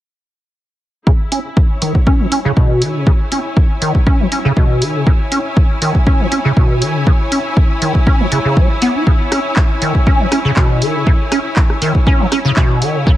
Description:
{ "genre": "acid house", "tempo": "120 BPM", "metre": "4/4", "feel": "straight", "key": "C# minor", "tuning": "A4 = 440 Hz", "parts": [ { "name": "liquid acid bass", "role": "riff", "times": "1.1-13.1 s", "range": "B2 to E4", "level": "-16 LUFS", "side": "equal", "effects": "ensemble chorus, cassette tape, sidechain pumping, tape echo" }, { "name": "electronic kick drum", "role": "drums", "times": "1.1-13.2 s", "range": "none", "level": "-12 LUFS", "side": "equal", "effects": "small room ambience" }, { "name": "clear studio string section", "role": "texture", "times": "1.1-13.2 s", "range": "E4 to G#5", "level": "-22 LUFS", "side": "left 1 dB", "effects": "sidechain pumping" }, { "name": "punchy analog drum machine", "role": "drums", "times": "1.3-12.9 s", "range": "handclaps, hi-hat, rim click", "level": "-21 LUFS", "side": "equal", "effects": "small room ambience" } ], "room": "light reverb", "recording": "heavily compressed radio sound", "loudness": "-11 LUFS", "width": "side -14 dB against mid", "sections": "1.1-13.2 A section", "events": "none", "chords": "1.1 C#m" }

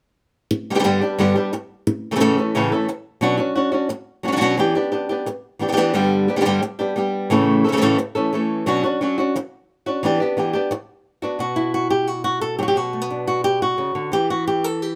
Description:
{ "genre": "flamenco", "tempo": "176 BPM", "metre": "4/4", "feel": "straight", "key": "B minor", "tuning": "A4 = 441 Hz", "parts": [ { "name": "flamenco guitar", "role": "solo", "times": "0.5-15.0 s", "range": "G2 to A4", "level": "-20 LUFS", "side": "equal", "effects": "none" } ], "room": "light reverb", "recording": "close, detailed microphones", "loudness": "-21 LUFS", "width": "mono", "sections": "0.5-11.4 A section; 11.4-15.0 B section", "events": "none", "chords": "0.5 G; 1.9 A; 3.2 Bmadd9; 4.6 Em7; 5.9 G; 7.3 A; 8.7 Bmadd9; 10.0 Em7; 10.7 Bm; 14.1 Em" }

